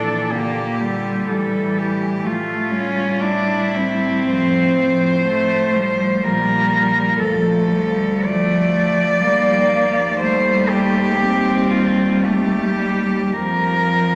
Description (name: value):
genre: classical, lyrical piece for cello ensemble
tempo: 52-64 BPM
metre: 3/4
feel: rubato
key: unclear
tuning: A4 = 440 Hz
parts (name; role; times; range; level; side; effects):
- warm cello; melody; 0.0-14.2 s; E4 to D5; -22 LUFS; equal; none
- dark cello; second line; 0.0-14.2 s; D3 to Bb3; -24 LUFS; equal; none
- warm cello; accompaniment; 0.0-14.2 s; F3 to D4; -24 LUFS; equal; none
- warm cello; bass; 0.0-14.2 s; D2 to Bb2; -28 LUFS; equal; none
room: wet concert hall reverb, RT60 2.1 s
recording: none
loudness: -18 LUFS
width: mono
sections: 0.0-14.2 A section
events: none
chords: 0.0 Gm/Bb; 1.3 A5; 4.3 F/A; 6.2 Bb5; 7.2 Dm; 9.2 Eb; 10.2 Cm/Eb; 13.3 N.C.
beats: 0.32 | 1.29 2.25 3.21 | 4.29 5.27 6.25 | 7.20 8.27 9.23 | 10.21 11.20 12.24 | 13.33